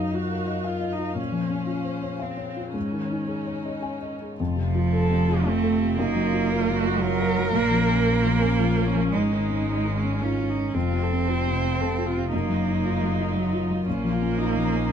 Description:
neoclassical piano and strings; 114 BPM; 3/4; rubato; Bb minor; A4 = 440 Hz
felt-muted upright piano; accompaniment; 0.0-14.9 s; F2 to Ab5; -26 LUFS; left 3 dB
rich viola; accompaniment; 0.0-14.9 s; C4 to C5; -30 LUFS; right 1 dB
rich chamber string section; sustained chords; 0.0-14.9 s; Db3 to F5; -36 LUFS; left 1 dB
rich double bass; bass; 4.4-14.9 s; F1 to Bb1; -29 LUFS; left 1 dB
rich cello; second line; 4.7-14.9 s; F3 to Db4; -25 LUFS; right 6 dB
moderate studio reverb, RT60 0.6 s; dark, warm production; -22 LUFS; side -8 dB against mid
0.0-4.4 A section; 4.4-14.9 B section
0.0 Ebmadd9/Gb; 1.2 Bbmadd9; 2.8 Absus4; 4.4 F; 6.0 Ebmadd9/Gb; 7.5 Bbmadd9; 9.1 Absus4; 10.7 F; 12.3 Ebmadd9/Gb; 13.9 Bbmadd9

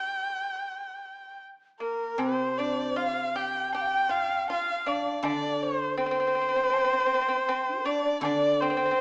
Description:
chinese traditional, Chinese chamber ensemble; 79 BPM; 4/4; rubato; G yu mode; A4 = 438 Hz
rich erhu; melody; 0.0-9.0 s; Bb4 to G5; -28 LUFS; equal
pipa; second line; 0.0-9.0 s; Bb3 to G4; -32 LUFS; equal
breathy xiao; second line; 1.8-9.0 s; D4 to G5; -29 LUFS; equal
guzheng; accompaniment; 2.2-9.0 s; C3 to D3; -33 LUFS; equal
woodblock; percussion; 2.2-8.4 s; -39 LUFS; equal
wet recital hall reverb, RT60 1.3 s; small speaker sound; -25 LUFS; side -34 dB against mid
0.0-2.2 A section; 2.2-9.0 B section

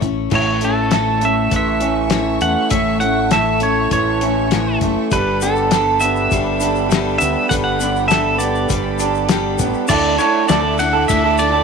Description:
folk rock and heartland rock; 100 BPM; 4/4; straight; A4 = 440 Hz
picked steel-string acoustic guitar; accompaniment; 0.0-11.6 s; A2 to C#5; -22 LUFS; left 14 dB
electric guitar through a small old amp; riff; 0.0-11.6 s; A2 to A4; -20 LUFS; right 13 dB
fingered electric bass; bass; 0.0-11.6 s; F#1 to E2; -24 LUFS; equal
cloth-damped thuddy drum kit; drums; 0.0-11.5 s; crash cymbal, hi-hat, kick drum, ride cymbal, snare drum; -21 LUFS; left 6 dB
reed electric piano; accompaniment; 0.3-11.6 s; D4 to D5; -32 LUFS; right 13 dB
clear symphonic string section; sustained chords; 0.3-11.6 s; G4 to D6; -29 LUFS; left 2 dB
pedal steel guitar; melody; 0.4-11.6 s; A4 to F#5; -19 LUFS; equal
tube shaker; percussion; 5.1-11.5 s; -31 LUFS; left 15 dB
light reverb; 1960s-style stereo with parts hard left and right; -14 LUFS; side -5 dB against mid
0.3-9.9 A section; 9.9-11.6 B section
0.3 A; 5.1 Gadd9; 9.9 Dsus2

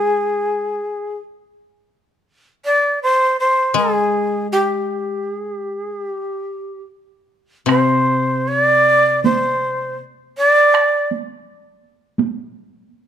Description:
japanese traditional, Japanese chamber music; 78 BPM; 4/4; uneven beats, rubato; A4 = 438 Hz
breathy shakuhachi; melody; 0.0-11.1 s; G4 to D5; -16 LUFS; equal
koto; accompaniment; 0.0-10.0 s; C3 to Ab3; -22 LUFS; left 3 dB
taiko ensemble; percussion; 7.7-12.3 s; -21 LUFS; right 6 dB
light reverb; close, detailed microphones; -15 LUFS; side -9 dB against mid
0.0-7.7 A section; 7.7-13.1 B section

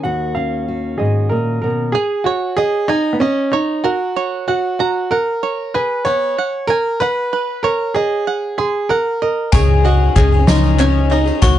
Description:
indie folk with a building arrangement; 63 BPM (dotted quarters); 6/8; straight; A4 = 436 Hz
clear upright piano; melody; 0.0-11.6 s; Cb4 to Gb5; -17 LUFS; right 2 dB
fingerpicked steel-string acoustic guitar; accompaniment; 0.0-2.0 s; Eb2 to Gb4; -19 LUFS; left 2 dB
bluegrass banjo; arpeggios; 1.9-11.6 s; Cb4 to C6; -23 LUFS; right 9 dB
glockenspiel with hard plastic mallets; second line; 9.5-11.6 s; Ab5 to Db6; -24 LUFS; left 12 dB
picked twelve-string acoustic guitar; accompaniment; 9.5-11.6 s; Db3 to Ab4; -23 LUFS; left 9 dB
hollow-body short-scale picked electric bass; bass; 9.5-11.6 s; Db2; -14 LUFS; left 1 dB
soft-mallet drum kit; drums; 9.5-11.6 s; kick drum, ride cymbal, snare drum; -16 LUFS; left 1 dB
group handclap; percussion; 9.5-11.6 s; -27 LUFS; left 9 dB
tambourine; percussion; 9.5-11.6 s; -35 LUFS; right 12 dB
little or no reverb; dark, warm production, nothing above 11.0 kHz; -14 LUFS; side -12 dB against mid
0.0-1.9 A section; 1.9-11.6 B section
0.0 Ebm7; 1.9 Dbsus2; 3.9 Gb; 5.7 Abm7; 7.6 Ebm7; 9.5 Dbsus2

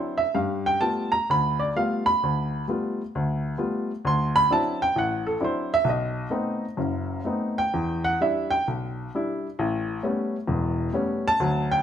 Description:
solo jazz; 130 BPM; 4/4; swing 66% on 8ths, rubato; A4 = 440 Hz
warm baby grand piano; solo; 0.0-11.8 s; E1 to C6; -23 LUFS; equal
moderate large studio reverb, RT60 1.2 s; minimal, uncompressed stereo recording; -23 LUFS; side -9 dB against mid
0.0-11.8 A section
grand piano solo 0.0-11.8
0.4 G9; 4.1 D9; 5.9 B7b9; 7.7 Em7; 9.6 A9

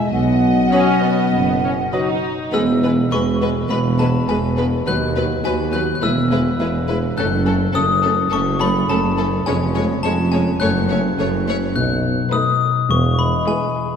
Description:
cinematic, playful, whimsical film cue; 104 BPM; 4/4; straight; E major; A4 = 443 Hz
dark studio violin section; second line; 0.0-13.9 s; B3 to E5; -29 LUFS; left 2 dB
mellow hollow small flute group; second line; 0.0-2.2 s; F#5 to G#5; -23 LUFS; right 6 dB
dark French horn section; sustained chords; 0.0-2.2 s; F#3; -21 LUFS; left 6 dB
concert harp; arpeggios; 0.0-14.0 s; E#2 to C#5; -26 LUFS; left 5 dB
dark studio cello section; bass; 0.1-13.4 s; D#2 to B2; -23 LUFS; right 2 dB
mellow tuba; bass; 0.1-13.4 s; E1 to D#2; -24 LUFS; right 2 dB
rich studio double bass section; bass; 0.1-13.4 s; E1 to D#2; -26 LUFS; right 3 dB
clear studio violin section; melody; 0.7-13.9 s; A4 to C#5; -28 LUFS; left 4 dB
clear oboe; second line; 0.7-2.1 s; D#5; -35 LUFS; equal
dark clarinet; second line; 0.7-2.1 s; F#4; -29 LUFS; left 3 dB
warm bassoon; accompaniment; 0.7-2.1 s; F#3; -32 LUFS; right 1 dB
warm studio viola section; accompaniment; 0.7-13.9 s; F#3 to D#4; -24 LUFS; right 1 dB
glockenspiel with hard plastic mallets; melody; 2.5-14.0 s; G#5 to F#6; -22 LUFS; left 4 dB
wet concert hall reverb, RT60 2.1 s; minimal, uncompressed stereo recording; -15 LUFS; side -7 dB against mid
0.0-2.5 A section; 2.5-14.0 B section
0.1 B; 2.5 E; 4.9 B/D#; 6.0 E; 7.2 F#m; 9.5 C#/E#; 10.6 F#m; 11.8 B7; 12.9 E

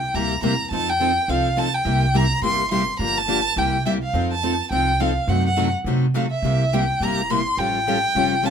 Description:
acoustic string swing (jazz manouche); 210 BPM; 4/4; swing 58% on 8ths; C mixolydian; A4 = 440 Hz
warm violin; melody; 0.0-8.5 s; E5 to C6; -22 LUFS; equal
picked steel-string acoustic guitar; accompaniment; 0.1-8.5 s; C3 to A4; -29 LUFS; right 8 dB
upright bass; bass; 0.1-8.5 s; E#1 to C3; -24 LUFS; right 1 dB
picked steel-string acoustic guitar; accompaniment; 0.2-8.5 s; C3 to A4; -25 LUFS; left 6 dB
light reverb; minimal, uncompressed stereo recording; -18 LUFS; side -7 dB against mid
0.0-8.5 A section
0.0 C7; 0.7 F7; 1.9 C7; 3.0 Gm7; 3.6 C7; 4.1 F7; 5.3 F#dim7; 6.4 C7; 7.6 Aaug7

